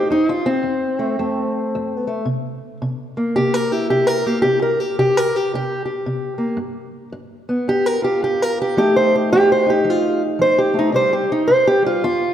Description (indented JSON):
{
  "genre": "acoustic country blues, solo or duo",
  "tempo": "111 BPM",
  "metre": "4/4",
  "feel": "swing 62% on 8ths",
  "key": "unclear",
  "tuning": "A4 = 440 Hz",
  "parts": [
    { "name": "fingerpicked acoustic archtop guitar", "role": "solo", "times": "0.0-12.3 s", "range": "F2 to C5", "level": "-16 LUFS", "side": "equal", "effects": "none" }
  ],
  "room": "wet concert hall reverb, RT60 2.1 s",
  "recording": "recorded in a church or concert hall",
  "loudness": "-16 LUFS",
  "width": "side -10 dB against mid",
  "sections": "0.0-12.3 A section",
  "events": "steel-string acoustic guitar solo 0.0-12.3",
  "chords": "0.0 F; 2.3 C7; 6.6 G7; 8.8 F7; 10.9 C5"
}